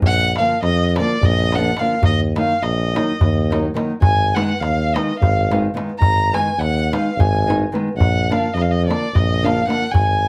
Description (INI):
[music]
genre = balkan folk, Balkan wedding band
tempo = 212 BPM (eighths)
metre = 7/8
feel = straight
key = Ab dorian sharp4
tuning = A4 = 439 Hz
[part]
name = clear tuba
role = bass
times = 0.0-10.3 s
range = Ab1 to F2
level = -23 LUFS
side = equal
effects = none
[part]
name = darbuka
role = percussion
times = 0.0-10.2 s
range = none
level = -22 LUFS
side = equal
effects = none
[part]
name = warm violin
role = melody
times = 0.1-10.3 s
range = D5 to Bb5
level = -23 LUFS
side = equal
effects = none
[part]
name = nylon-string guitar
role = accompaniment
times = 0.4-9.8 s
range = D3 to Eb4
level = -24 LUFS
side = equal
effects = none
[sound]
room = light reverb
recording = none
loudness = -18 LUFS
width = mono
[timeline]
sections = 0.0-10.3 A section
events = none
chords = 0.0 Bb; 2.0 Ebm; 4.0 Abm; 8.0 Bb